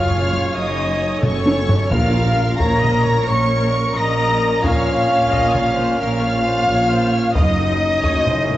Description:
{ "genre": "cinematic, epic orchestral film score", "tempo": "88 BPM (dotted quarters)", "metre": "12/8", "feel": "straight", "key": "Bb harmonic minor", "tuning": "A4 = 440 Hz", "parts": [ { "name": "warm symphonic violin section", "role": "melody", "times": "0.0-8.6 s", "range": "Db6 to Db7", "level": "-28 LUFS", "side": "left 1 dB", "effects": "none" }, { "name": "clear symphonic violin section", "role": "second line", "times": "0.0-8.6 s", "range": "Db5 to Db6", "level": "-28 LUFS", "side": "left 3 dB", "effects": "none" }, { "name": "mellow flute section", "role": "second line", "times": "0.0-8.6 s", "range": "Db5 to Db6", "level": "-25 LUFS", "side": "left 1 dB", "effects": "none" }, { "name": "rich symphonic viola section", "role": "accompaniment", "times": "0.0-8.6 s", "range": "A4 to Eb5", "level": "-26 LUFS", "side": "equal", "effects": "none" }, { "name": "warm French horn section", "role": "sustained chords", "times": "0.0-8.6 s", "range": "Db4 to Db5", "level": "-24 LUFS", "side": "left 3 dB", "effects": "none" }, { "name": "warm trombone section", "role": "sustained chords", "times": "0.0-8.6 s", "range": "A2 to Db4", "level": "-27 LUFS", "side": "right 2 dB", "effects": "none" }, { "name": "dark trumpet section", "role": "stabs", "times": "0.0-8.6 s", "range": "Db5 to Db6", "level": "-23 LUFS", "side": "equal", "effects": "none" }, { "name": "clear symphonic double bass section", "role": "bass", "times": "0.0-8.6 s", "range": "Gb1 to Bb1", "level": "-24 LUFS", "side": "right 2 dB", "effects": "none" }, { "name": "rich symphonic cello section", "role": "bass", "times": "0.0-8.6 s", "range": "Gb2 to Bb2", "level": "-23 LUFS", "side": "right 2 dB", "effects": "none" }, { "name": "taiko ensemble", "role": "drums", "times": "0.1-8.6 s", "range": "none", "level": "-21 LUFS", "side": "equal", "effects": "none" }, { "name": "timpani", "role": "percussion", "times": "1.9-2.5 s", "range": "Bb2", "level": "-24 LUFS", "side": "equal", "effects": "none" } ], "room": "wet scoring stage reverb, RT60 1.9 s", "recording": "worn, warbling old tape, cassette tape, warbly pitch drift, nothing above 8.0 kHz", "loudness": "-15 LUFS", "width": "side -14 dB against mid", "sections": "0.0-8.6 A section", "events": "drum fill 1.2-1.9", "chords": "0.0 Gbm; 1.9 Bbm; 7.3 Gbm" }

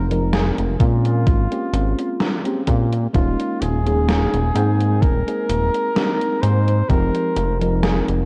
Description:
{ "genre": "vaporwave", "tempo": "64 BPM", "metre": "4/4", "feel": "swing 53% on 16ths", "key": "Ab major", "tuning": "A4 = 440 Hz", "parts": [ { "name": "warm flugelhorn", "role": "melody", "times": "0.0-8.0 s", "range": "F4 to C5", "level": "-28 LUFS", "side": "equal", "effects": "tape echo" }, { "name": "mellow FM electric piano", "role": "accompaniment", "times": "0.0-8.2 s", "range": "F3 to G5", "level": "-25 LUFS", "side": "equal", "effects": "subtle chorus, delay" }, { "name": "chorused synth bass", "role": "bass", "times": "0.0-8.3 s", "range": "Eb1 to Bb2", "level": "-22 LUFS", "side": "equal", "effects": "none" }, { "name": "gated 80s digital drum machine", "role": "drums", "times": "0.1-8.3 s", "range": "hi-hat, snare drum", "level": "-27 LUFS", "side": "equal", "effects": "gated reverb, gated reverb snare, overdrive" }, { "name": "electronic kick drum", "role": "drums", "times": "0.8-7.1 s", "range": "none", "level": "-20 LUFS", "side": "equal", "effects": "overdrive" } ], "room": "moderate plate reverb, RT60 2.6 s", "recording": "dreamy mix soaked in reverb, cassette tape", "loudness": "-19 LUFS", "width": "mono", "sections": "0.0-8.3 A section", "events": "none", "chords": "0.0 Fm7; 0.8 Bbm7; 3.1 Eb9sus4; 4.5 Abmaj9; 6.9 Fm9" }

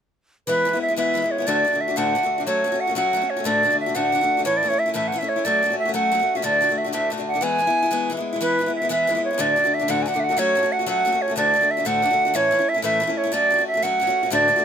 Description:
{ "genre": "celtic folk", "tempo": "122 BPM (dotted quarters)", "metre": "6/8", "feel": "straight", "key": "E mixolydian", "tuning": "A4 = 440 Hz", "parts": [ { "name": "bright wooden flute", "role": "melody", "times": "0.5-14.6 s", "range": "B4 to G#5", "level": "-19 LUFS", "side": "right 2 dB", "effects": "none" }, { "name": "picked acoustic archtop guitar", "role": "accompaniment", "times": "0.5-14.6 s", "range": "D2 to F#4", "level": "-24 LUFS", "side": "left 4 dB", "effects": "none" } ], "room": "light reverb", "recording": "close, detailed microphones", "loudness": "-18 LUFS", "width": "side -8 dB against mid", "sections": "0.5-8.4 A section; 8.4-14.6 A section", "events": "none", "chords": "0.5 E; 1.5 D; 2.5 F#m; 3.5 D; 4.5 A; 5.4 F#m; 6.4 D; 7.4 E; 9.4 D; 10.4 F#m; 11.4 D; 12.3 A; 13.3 F#m" }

